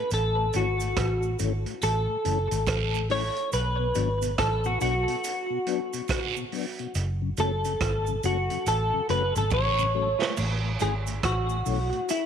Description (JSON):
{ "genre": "roots reggae", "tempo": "70 BPM", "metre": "4/4", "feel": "swing 62% on 16ths", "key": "A major", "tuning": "A4 = 438 Hz", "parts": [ { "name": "clean electric guitar", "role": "melody", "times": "0.0-12.3 s", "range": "E4 to C#5", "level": "-27 LUFS", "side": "left 1 dB", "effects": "analog chorus, tape echo" }, { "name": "mellow tonewheel organ", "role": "accompaniment", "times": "0.0-12.0 s", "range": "F#2 to D4", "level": "-35 LUFS", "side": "left 11 dB", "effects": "chorus vibrato, slow rotary speaker" }, { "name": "vintage muted fingered electric bass", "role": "bass", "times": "0.1-11.9 s", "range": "F#1 to B1", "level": "-28 LUFS", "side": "equal", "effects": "none" }, { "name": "vintage drum kit", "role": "drums", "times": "0.1-12.3 s", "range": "crash cymbal, hi-hat, kick drum, rim click, snare drum", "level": "-32 LUFS", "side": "right 4 dB", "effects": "slapback echo" }, { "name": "cabasa and guiro", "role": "percussion", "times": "0.1-12.3 s", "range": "none", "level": "-37 LUFS", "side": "right 13 dB", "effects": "none" } ], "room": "light reverb, small room ambience", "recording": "1960s-style stereo with parts hard left and right", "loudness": "-24 LUFS", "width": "side -8 dB against mid", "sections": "0.0-10.4 A section; 10.4-12.3 B section", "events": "clean electric guitar solo 0.0-10.4; drum fill 9.5-10.4", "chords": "0.0 A; 3.5 Bm; 7.0 F#m; 10.4 A", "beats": "| 0.11 0.97 1.82 2.68 | 3.53 4.39 5.24 6.10 | 6.95 7.81 8.66 9.52 | 10.38 11.23 12.09" }